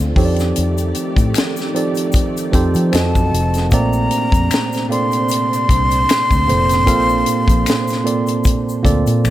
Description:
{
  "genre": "R&B, neo-soul",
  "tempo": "76 BPM",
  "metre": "4/4",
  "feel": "swing 55% on 16ths",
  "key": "unclear",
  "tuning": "A4 = 436 Hz",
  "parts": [
    { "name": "tine electric piano", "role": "accompaniment", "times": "0.0-9.3 s", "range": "Bb2 to F5", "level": "-19 LUFS", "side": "right 3 dB", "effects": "none" },
    { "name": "soft string machine", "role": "sustained chords", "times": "0.0-9.3 s", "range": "C3 to D5", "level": "-28 LUFS", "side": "equal", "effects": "ensemble chorus" },
    { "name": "vintage muted fingered electric bass", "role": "bass", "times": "0.0-9.3 s", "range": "F1 to F3", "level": "-18 LUFS", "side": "left 1 dB", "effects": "none" },
    { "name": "egg shaker and finger snaps", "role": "percussion", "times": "0.0-9.3 s", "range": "none", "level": "-30 LUFS", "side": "left 7 dB", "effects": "none" },
    { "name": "tight funk drum kit", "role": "drums", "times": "0.2-9.2 s", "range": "hi-hat, kick drum, snare drum", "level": "-18 LUFS", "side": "left 1 dB", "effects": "none" },
    { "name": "breathy jazz flute", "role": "melody", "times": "2.9-9.2 s", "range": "A5 to C6", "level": "-19 LUFS", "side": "equal", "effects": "none" }
  ],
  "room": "small room reverb",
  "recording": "none",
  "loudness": "-13 LUFS",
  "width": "side -14 dB against mid",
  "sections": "0.0-9.3 A section",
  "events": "none",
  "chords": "0.2 F13; 2.9 F7b9; 3.7 Bbmaj9"
}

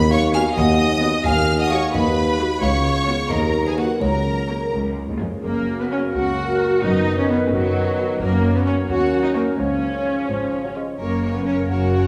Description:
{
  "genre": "cinematic, playful, whimsical film cue",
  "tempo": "87 BPM (dotted quarters)",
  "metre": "6/8",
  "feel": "straight",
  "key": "F# major",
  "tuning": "A4 = 440 Hz",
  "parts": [
    { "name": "clear studio violin section", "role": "melody", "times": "0.0-12.1 s", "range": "F#4 to E#6", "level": "-31 LUFS", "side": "equal", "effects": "none" },
    { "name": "music box", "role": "melody", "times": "0.0-4.7 s", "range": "A#4 to G#5", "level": "-29 LUFS", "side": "equal", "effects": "none" },
    { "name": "concert harp", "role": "arpeggios", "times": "0.0-12.1 s", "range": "F#2 to C#5", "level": "-32 LUFS", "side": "equal", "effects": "none" },
    { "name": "rich studio cello section", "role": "bass", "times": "0.0-12.1 s", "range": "C#2 to G#2", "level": "-29 LUFS", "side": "equal", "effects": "none" },
    { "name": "rich studio double bass section", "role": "bass", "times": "0.0-12.1 s", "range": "F#1 to D#2", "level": "-28 LUFS", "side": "equal", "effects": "none" },
    { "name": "warm tuba", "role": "bass", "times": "0.0-5.3 s", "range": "C#2 to D#2", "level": "-25 LUFS", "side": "equal", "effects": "none" },
    { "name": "clear studio violin section", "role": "second line", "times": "0.1-12.1 s", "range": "E#4 to E#5", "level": "-30 LUFS", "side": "equal", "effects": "none" },
    { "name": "rich studio viola section", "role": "accompaniment", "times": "0.3-12.1 s", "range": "F#3 to F#4", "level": "-26 LUFS", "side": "equal", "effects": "none" },
    { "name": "flute section", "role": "second line", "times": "5.4-12.1 s", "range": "F#4 to F#5", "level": "-33 LUFS", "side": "equal", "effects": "none" },
    { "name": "warm clarinet", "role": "second line", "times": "5.4-12.1 s", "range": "A#4 to C#5", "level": "-34 LUFS", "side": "equal", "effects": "none" },
    { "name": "mellow bassoon", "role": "accompaniment", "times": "5.4-12.1 s", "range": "C#3 to G#3", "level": "-30 LUFS", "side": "equal", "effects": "none" },
    { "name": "dark French horn section", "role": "sustained chords", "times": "5.4-12.1 s", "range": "E#3 to F#4", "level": "-29 LUFS", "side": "equal", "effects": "none" }
  ],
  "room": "wet recital hall reverb, RT60 1.6 s",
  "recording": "recorded in a church or concert hall",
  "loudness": "-20 LUFS",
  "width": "mono",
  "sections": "0.0-5.4 A section; 5.4-12.1 B section",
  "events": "none",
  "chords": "0.0 B/D#; 1.3 G#m7/D#; 2.6 C#7; 3.3 D#m; 4.0 F#/C#; 4.7 C#; 5.4 F#; 6.8 B/F#; 8.2 F#; 8.9 D#m7; 9.6 C#; 11.0 F#"
}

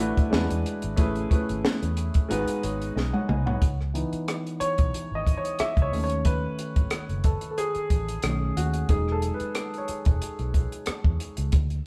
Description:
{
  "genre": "lush 1970s-style soul",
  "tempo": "91 BPM",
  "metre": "4/4",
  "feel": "swing 54% on 16ths",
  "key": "C# minor",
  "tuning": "A4 = 440 Hz",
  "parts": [
    { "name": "warm baby grand piano", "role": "accompaniment", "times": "0.0-11.6 s", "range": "D#3 to G#5", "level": "-31 LUFS", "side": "equal", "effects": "none" },
    { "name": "vintage muted fingered electric bass", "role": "bass", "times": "0.0-11.8 s", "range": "E1 to E2", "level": "-32 LUFS", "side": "equal", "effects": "none" },
    { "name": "compact cocktail drum kit", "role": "drums", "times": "0.0-11.8 s", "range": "hi-hat, kick drum, rim click, snare drum, toms", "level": "-27 LUFS", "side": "equal", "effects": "none" }
  ],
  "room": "moderate studio reverb, RT60 0.9 s",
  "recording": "band playing live in one room",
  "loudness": "-26 LUFS",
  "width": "mono",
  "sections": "0.0-3.6 A section; 3.6-11.9 B section",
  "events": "drum fill 3.0-3.6; grand piano solo 3.6-11.9",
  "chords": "0.3 E9; 1.0 Amaj9; 2.3 G#m7; 3.6 C#m7; 5.9 B7; 8.9 Emaj9"
}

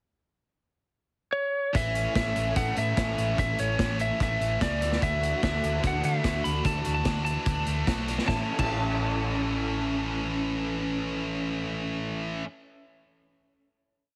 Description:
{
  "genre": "indie rock",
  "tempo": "147 BPM",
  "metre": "4/4",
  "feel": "straight",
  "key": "A major",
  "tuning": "A4 = 444 Hz",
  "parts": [
    { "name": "lightly driven lead guitar", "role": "melody", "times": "1.3-12.3 s", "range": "C#5 to B5", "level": "-32 LUFS", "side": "equal", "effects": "tape echo" },
    { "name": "high-gain distorted guitar", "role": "riff", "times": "1.7-12.5 s", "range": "E3 to F#4", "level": "-35 LUFS", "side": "equal", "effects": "distortion" },
    { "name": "overdriven electric guitar", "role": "riff", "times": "1.7-12.5 s", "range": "E3 to A4", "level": "-36 LUFS", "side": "equal", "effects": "ensemble chorus, tape echo" },
    { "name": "vintage drum kit", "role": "drums", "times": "1.7-8.7 s", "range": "crash cymbal, hi-hat, kick drum, snare drum", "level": "-33 LUFS", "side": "equal", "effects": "none" },
    { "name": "hollow-body short-scale picked electric bass", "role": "bass", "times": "1.8-12.4 s", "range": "A1 to D3", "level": "-34 LUFS", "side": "equal", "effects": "none" }
  ],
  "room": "light reverb",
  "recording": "heavily compressed radio sound, multiband compression",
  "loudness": "-28 LUFS",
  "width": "mono",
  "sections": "0.1-1.8 pickup bar; 1.8-8.3 verse; 8.3-11.5 final chord",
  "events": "none",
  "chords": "0.1 N.C.; 1.8 A; 4.8 Dadd9; 8.3 A"
}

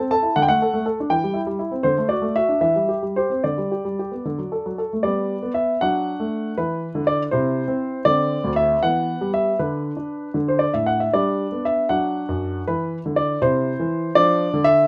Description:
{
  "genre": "classical-period piano sonatina",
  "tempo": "79 BPM (dotted quarters)",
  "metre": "6/8",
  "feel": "rubato",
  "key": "G major",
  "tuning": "A4 = 440 Hz",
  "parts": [
    { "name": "clear grand piano", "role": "solo", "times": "0.0-14.9 s", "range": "D2 to A5", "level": "-21 LUFS", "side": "equal", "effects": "none" }
  ],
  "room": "light reverb",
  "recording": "none",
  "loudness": "-22 LUFS",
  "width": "mono",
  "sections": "0.0-5.0 A section; 5.0-14.9 B section",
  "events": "none",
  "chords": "0.3 D; 1.1 C/E; 1.8 D; 2.6 C/E; 3.4 G/D; 4.2 D; 5.0 G; 5.8 D/F#; 6.6 E5; 7.3 C; 8.1 Cadd9/D; 8.8 Em; 9.6 N.C.; 10.4 D5; 11.1 G; 11.9 D/F#; 12.7 E5; 13.4 C; 14.2 Dm/F"
}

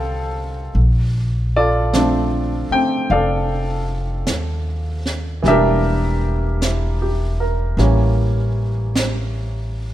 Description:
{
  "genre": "jazz ballad",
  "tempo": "51 BPM",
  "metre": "4/4",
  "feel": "swing 66% on 8ths",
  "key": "Bb major",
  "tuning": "A4 = 441 Hz",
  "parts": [
    { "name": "clear grand piano", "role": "accompaniment", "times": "0.0-9.9 s", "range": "D3 to A5", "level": "-20 LUFS", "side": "equal", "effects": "none" },
    { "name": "upright bass", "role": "bass", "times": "0.0-9.9 s", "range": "E1 to Eb2", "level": "-19 LUFS", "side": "equal", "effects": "none" },
    { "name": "jazz brush drum kit", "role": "drums", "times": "0.8-9.9 s", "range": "brushed snare drum, hi-hat, snare drum", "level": "-26 LUFS", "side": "right 2 dB", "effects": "none" }
  ],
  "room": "light reverb",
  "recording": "none",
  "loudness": "-17 LUFS",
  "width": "side -13 dB against mid",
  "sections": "0.0-9.9 A section",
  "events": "none",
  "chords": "0.0 F13; 0.8 Bbmaj9; 5.4 Em7b5; 7.8 A7b9"
}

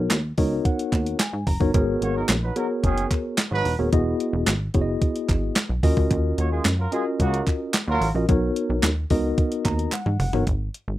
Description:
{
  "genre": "early-eighties boogie funk",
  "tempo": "110 BPM",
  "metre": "4/4",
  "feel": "straight",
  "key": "unclear",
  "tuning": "A4 = 435 Hz",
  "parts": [
    { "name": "mellow tine electric piano", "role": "accompaniment", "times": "0.0-10.5 s", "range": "B3 to A#5", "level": "-25 LUFS", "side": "left 2 dB", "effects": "medium stereo tremolo" },
    { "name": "plucky analog bass", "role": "bass", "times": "0.0-11.0 s", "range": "Eb1 to Ab2", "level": "-24 LUFS", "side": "equal", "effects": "none" },
    { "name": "crisp 8-bit digital drum machine", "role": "drums", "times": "0.1-10.9 s", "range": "handclaps, hi-hat, kick drum, snare drum, toms", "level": "-23 LUFS", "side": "equal", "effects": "none" },
    { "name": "group handclap", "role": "percussion", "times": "0.1-10.1 s", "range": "none", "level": "-29 LUFS", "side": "right 3 dB", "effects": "none" },
    { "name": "warm horn section", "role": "second line", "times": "2.0-8.1 s", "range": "Db3 to Db5", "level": "-26 LUFS", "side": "right 3 dB", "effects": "none" }
  ],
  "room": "light reverb",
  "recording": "rough home demo mix",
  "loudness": "-20 LUFS",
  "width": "side -15 dB against mid",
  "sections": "0.0-10.5 A section",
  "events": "tine electric piano fill 0.1-1.7, 9.4-10.5; drum fill 9.9-10.5",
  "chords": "0.0 Bmaj9; 1.7 Abm11; 3.9 Emaj9; 5.8 Ebm9; 8.3 Bmaj9; 10.5 N.C."
}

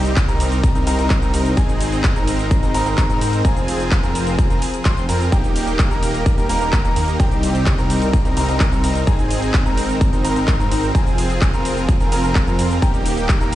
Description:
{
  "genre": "EDM, festival progressive house",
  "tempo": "128 BPM",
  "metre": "4/4",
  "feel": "straight",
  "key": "F minor",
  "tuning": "A4 = 440 Hz",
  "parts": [
    { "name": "lush unison pad", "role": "sustained chords", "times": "0.0-13.6 s", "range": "C3 to Ab4", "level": "-25 LUFS", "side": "equal", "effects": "chorus, vintage 12-bit sampler grit, sidechain pumping" },
    { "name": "dark baby grand piano", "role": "arpeggios", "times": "0.0-13.6 s", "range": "G5 to C6", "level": "-27 LUFS", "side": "equal", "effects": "sidechain pumping, tape echo" },
    { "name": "supersaw chords", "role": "riff", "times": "0.0-13.6 s", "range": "Bb3 to C5", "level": "-24 LUFS", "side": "right 1 dB", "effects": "sidechain pumping, tape echo" },
    { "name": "wide detuned saw bass", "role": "bass", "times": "0.0-13.6 s", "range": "Eb1 to Ab2", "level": "-22 LUFS", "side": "equal", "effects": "chorus, sidechain pumping" },
    { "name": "big-room dance drum kit", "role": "drums", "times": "0.0-13.6 s", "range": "handclaps, hi-hat, ride cymbal, shaker", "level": "-28 LUFS", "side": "equal", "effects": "overdrive" },
    { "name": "electronic kick drum", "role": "drums", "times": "0.2-13.4 s", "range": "none", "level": "-17 LUFS", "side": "equal", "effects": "overdrive" }
  ],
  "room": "digital ambience",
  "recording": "played on a big sound system in a bare room, stone room reverb, nothing above 10.4 kHz",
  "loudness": "-15 LUFS",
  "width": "side -14 dB against mid",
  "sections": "0.0-13.6 A section",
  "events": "none",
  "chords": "0.0 Cm; 1.6 Ab; 3.4 Fm; 5.3 Eb; 7.2 Cm; 9.1 Ab; 10.9 Fm; 12.8 Eb"
}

